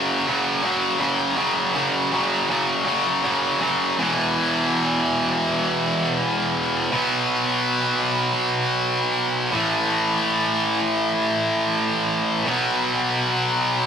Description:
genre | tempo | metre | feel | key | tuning
rock | 81 BPM | 4/4 | straight | unclear | A4 = 440 Hz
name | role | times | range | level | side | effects
heavy high-gain guitar | solo | 0.0-13.9 s | E2 to B3 | -19 LUFS | equal | distortion
room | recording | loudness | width
wet stone room reverb, RT60 1.0 s | rough rehearsal-room recording, warm saturation | -19 LUFS | side -7 dB against mid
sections
0.0-4.0 A section; 4.0-13.9 B section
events
half time 0.0-4.0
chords
0.0 F#5; 4.0 E5; 6.9 B5; 9.5 A5; 12.5 B5

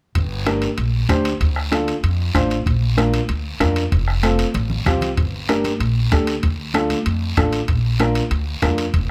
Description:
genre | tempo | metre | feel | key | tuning
latin, cumbia | 191 BPM | 4/4 | straight | G minor | A4 = 441 Hz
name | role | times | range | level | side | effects
upright bass | bass | 0.1-9.1 s | F1 to F2 | -24 LUFS | equal | none
bombo | percussion | 0.2-9.1 s | none | -23 LUFS | equal | none
guiro | percussion | 0.2-9.1 s | none | -34 LUFS | equal | none
timbales | percussion | 0.2-9.1 s | none | -33 LUFS | equal | none
dark upright piano | accompaniment | 0.5-8.8 s | C4 to C5 | -24 LUFS | equal | none
congas | percussion | 0.5-8.8 s | none | -30 LUFS | equal | none
room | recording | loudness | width
little or no reverb | close, detailed microphones | -20 LUFS | mono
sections
0.2-9.1 A section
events
drum fill 4.2-5.2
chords
0.2 Gm; 1.4 Dm; 2.7 Bb; 3.9 F; 5.2 Gm; 6.4 Dm; 7.7 Bb

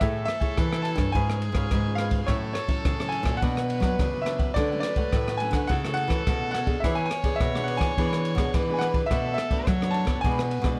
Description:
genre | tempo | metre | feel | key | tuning
samba and choro | 106 BPM | 4/4 | straight | A major | A4 = 440 Hz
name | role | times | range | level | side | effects
clear baby grand piano | melody | 0.0-10.8 s | C#5 to A5 | -33 LUFS | equal | none
dark violin | second line | 0.0-10.8 s | G#4 to C#5 | -35 LUFS | equal | none
cavaquinho | accompaniment | 0.0-10.8 s | D4 to G#5 | -41 LUFS | equal | none
nylon-string guitar | accompaniment | 0.0-10.8 s | F#2 to C#5 | -37 LUFS | equal | none
nylon-string guitar | bass | 0.0-10.8 s | G2 to B3 | -31 LUFS | equal | none
open jazz drum kit | drums | 0.0-10.8 s | kick drum, ride cymbal, rim click | -30 LUFS | equal | none
room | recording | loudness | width
little or no reverb | close, detailed microphones | -26 LUFS | mono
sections
0.0-10.8 A section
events
none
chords
0.0 Amaj7; 1.1 C#7/G#; 2.3 F#m7/A; 3.4 Bm; 4.6 Dmaj7; 5.7 A6/C#; 6.8 E7; 9.1 Bm7; 10.2 E7/B

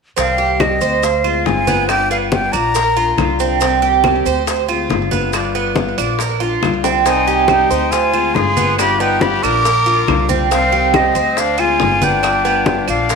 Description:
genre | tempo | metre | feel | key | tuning
latin, Cuban son and guajira | 139 BPM | 4/4 | straight | C minor | A4 = 435 Hz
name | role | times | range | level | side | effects
breathy concert flute | melody | 0.2-3.4, 7.1-13.2 s | Eb5 to D6 | -17 LUFS | left 1 dB | tape echo
fingerpicked steel-string acoustic guitar | accompaniment | 0.2-13.1 s | C3 to G4 | -23 LUFS | left 10 dB | none
Cuban tres | arpeggios | 0.2-13.2 s | B3 to C5 | -18 LUFS | right 9 dB | tape echo
upright bass | bass | 0.2-13.2 s | G1 to D2 | -23 LUFS | equal | none
bongos | percussion | 0.2-13.2 s | none | -25 LUFS | left 12 dB | none
congas | percussion | 0.2-13.2 s | none | -22 LUFS | left 3 dB | none
maracas | percussion | 0.2-13.2 s | none | -30 LUFS | right 14 dB | none
claves | percussion | 0.6-13.1 s | none | -29 LUFS | right 12 dB | none
growling trumpet | second line | 7.1-13.2 s | C4 to Bb4 | -21 LUFS | left 8 dB | none
room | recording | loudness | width
wet echo chamber reverb, RT60 1.5 s, studio reverb | 1960s-style stereo with parts hard left and right | -13 LUFS | side -5 dB against mid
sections
0.2-13.2 A section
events
drum fill 6.8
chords
0.2 Cm; 1.0 Dm7b5; 1.9 G7; 2.8 Bb6; 3.6 Cm; 4.5 Dm7b5; 5.3 G7; 6.2 Bb6; 7.1 Cm; 7.9 Dm7b5; 8.8 G7; 9.6 Bb6; 10.5 Cm; 11.4 Dm7b5; 12.2 G7

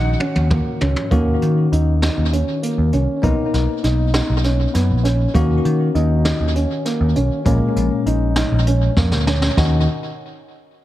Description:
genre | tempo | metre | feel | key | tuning
progressive instrumental, band music in an uneven meter | 199 BPM (eighths) | 7/8 | straight | Eb minor | A4 = 442 Hz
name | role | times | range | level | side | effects
silver concert flute | melody | 0.0-0.8 s | Gb5 | -32 LUFS | right 3 dB | tape echo
breathy alto saxophone | second line | 0.0-0.8 s | Gb4 | -37 LUFS | right 2 dB | none
bell-like tine electric piano | accompaniment | 0.0-9.9 s | Bb2 to Gb4 | -24 LUFS | left 4 dB | phaser, tape echo
dark baby grand piano | arpeggios | 0.0-9.9 s | Bb3 to Eb4 | -23 LUFS | right 2 dB | tape echo
picked electric bass | bass | 0.0-9.9 s | Bb1 to Eb3 | -17 LUFS | equal | none
jazz brush drum kit | drums | 0.2-9.7 s | hi-hat, kick drum, snare drum, toms | -23 LUFS | equal | tape echo
room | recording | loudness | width
studio reverb | echo-heavy mix | -15 LUFS | side -14 dB against mid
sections
0.0-1.1 A section; 1.1-9.6 B section; 9.6-10.8 C section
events
drum fill 0.0-1.1, 9.0-9.6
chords
0.0 Ebm7; 3.2 Bmaj7; 5.3 Ebm7; 7.5 Bbm7; 9.6 Ebm7

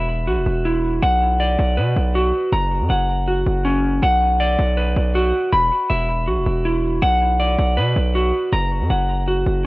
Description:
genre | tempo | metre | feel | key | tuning
hip hop | 160 BPM | 4/4 | half-time | B harmonic minor | A4 = 440 Hz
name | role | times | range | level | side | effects
clean electric guitar | arpeggios | 0.0-9.7 s | C#4 to B5 | -19 LUFS | equal | low-pass filter, tape echo
distorted 808-style bass | bass | 0.0-9.7 s | E1 to B2 | -19 LUFS | equal | distortion
room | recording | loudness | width
light reverb | worn, warbling old tape, cassette tape, warbly pitch drift | -16 LUFS | side -20 dB against mid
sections
0.0-9.7 A section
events
none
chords
0.0 Esus2; 1.0 Bm; 2.5 F#; 4.0 Bm; 5.5 Esus2; 7.0 Bm; 8.5 F#

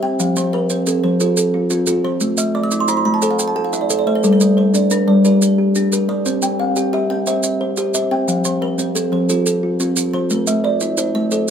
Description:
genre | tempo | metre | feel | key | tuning
southern african traditional, mbira-style interlocking cycle | 119 BPM (dotted quarters) | 12/8 | straight | unclear | A4 = 442 Hz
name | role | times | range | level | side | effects
kalimba | arpeggios | 0.0-11.5 s | F3+29c to G5 | -17 LUFS | left 1 dB | none
kalimba | arpeggios | 0.0-11.5 s | F3+29c to E6-43c | -19 LUFS | right 2 dB | none
maracas | percussion | 0.2-11.5 s | none | -22 LUFS | right 5 dB | none
room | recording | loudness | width
light reverb | close, detailed microphones | -15 LUFS | side -8 dB against mid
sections
0.0-11.5 A section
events
kalimba fill 2.4-4.2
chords
0.2 F; 2.2 Am; 4.2 Gm; 6.3 C; 8.3 F; 10.3 Am

